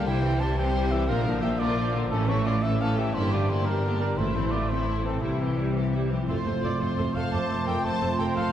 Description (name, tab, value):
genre	cinematic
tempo	116 BPM (dotted quarters)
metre	12/8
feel	straight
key	unclear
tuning	A4 = 441 Hz
part	warm symphonic violin section	melody	0.0-8.5 s	G3 to A5	-36 LUFS	left 5 dB	none
part	mellow cor anglais	second line	0.0-8.5 s	E4 to A5	-32 LUFS	equal	none
part	rich symphonic violin section	second line	0.0-8.5 s	A3 to C5	-36 LUFS	left 2 dB	none
part	rich symphonic viola section	accompaniment	0.0-8.4 s	D3 to A4	-33 LUFS	right 2 dB	none
part	dark French horn section	sustained chords	0.0-8.5 s	E3 to F4	-33 LUFS	left 3 dB	none
part	concert harp	arpeggios	0.0-8.5 s	G2 to D5	-33 LUFS	left 5 dB	none
part	rich symphonic cello section	bass	0.0-8.4 s	F2 to C3	-32 LUFS	right 2 dB	none
part	rich symphonic double bass section	bass	0.0-8.4 s	F1 to C2	-30 LUFS	right 1 dB	none
part	timpani	percussion	2.1-4.7 s	A2	-34 LUFS	right 2 dB	none
part	warm trombone section	sustained chords	6.3-8.5 s	F3 to A3	-31 LUFS	right 5 dB	none
part	clear trumpet section	stabs	6.3-8.5 s	C5	-34 LUFS	right 3 dB	none
part	hollow concert flute	second line	7.3-8.5 s	A5 to D6	-35 LUFS	left 2 dB	none
room	wet scoring stage reverb, RT60 1.9 s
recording	heard from further back in the room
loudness	-23 LUFS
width	side -10 dB against mid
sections	0.0-6.3 A section; 6.3-8.5 B section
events	none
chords	0.1 C; 1.1 Bb; 2.1 A; 3.2 Gm; 4.2 Am; 5.2 C; 6.3 F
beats	| 0.07 0.58 1.09 1.61 | 2.12 2.64 3.15 3.67 | 4.19 4.71 5.24 5.77 | 6.29 6.81 7.33 7.85 | 8.36